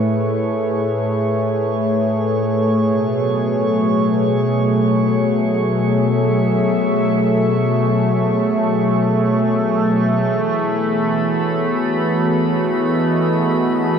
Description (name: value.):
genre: ambient.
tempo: free time.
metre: none.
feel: none.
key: unclear.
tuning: A4 = 440 Hz.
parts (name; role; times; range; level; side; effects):
warm analog pad; sustained chords; 0.0-14.0 s; A2 to E5; -17 LUFS; equal; chorus.
analog drone; drone; 0.0-14.0 s; A3; -21 LUFS; right 1 dB; chorus.
drifting glass-harmonics texture; texture; 0.0-14.0 s; B5 to C#6; -30 LUFS; right 3 dB; chorus, built-in reverb.
room: wet cathedral reverb, RT60 6.8 s.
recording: dark, warm production.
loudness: -15 LUFS.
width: side -7 dB against mid.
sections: 0.0-14.0 A section.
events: fade-in on synth texture 0.0-14.0.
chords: 0.0 Amaj7; 2.9 B13sus4; 10.3 Emaj9.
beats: free time.